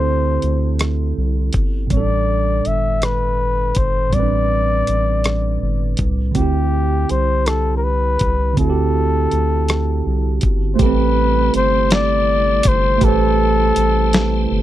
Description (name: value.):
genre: slow six-eight R&B.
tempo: 54 BPM (dotted quarters).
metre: 6/8.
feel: straight.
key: A minor from 10.8 s.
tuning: A4 = 439 Hz.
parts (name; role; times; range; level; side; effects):
mellow flugelhorn; melody; 0.0-14.6 s; G4 to E5; -20 LUFS; left 3 dB; none.
tine electric piano; accompaniment; 0.0-14.6 s; A2 to C5; -21 LUFS; right 8 dB; wide subtle chorus.
round analog bass; bass; 0.0-14.6 s; G1 to D2; -19 LUFS; equal; none.
dusty soul sampler-style drum kit; drums; 0.4-14.3 s; hi-hat, kick drum, rim click, snare drum; -18 LUFS; equal; none.
tonewheel organ; sustained chords; 10.8-14.6 s; C3 to E4; -28 LUFS; left 1 dB; overdrive, chorus vibrato, fast rotary speaker.
room: little or no reverb.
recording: dry, close 1970s-style studio recording.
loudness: -15 LUFS.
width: side -13 dB against mid.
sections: 0.0-10.8 A section; 10.8-14.6 B section.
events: none.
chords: 0.0 D9sus4; 1.9 A9sus4; 6.4 D9sus4; 10.8 Am9.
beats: 0.80 | 1.91 3.02 | 4.13 5.24 | 6.35 7.46 | 8.57 9.69 | 10.80 11.91 | 13.02 14.13.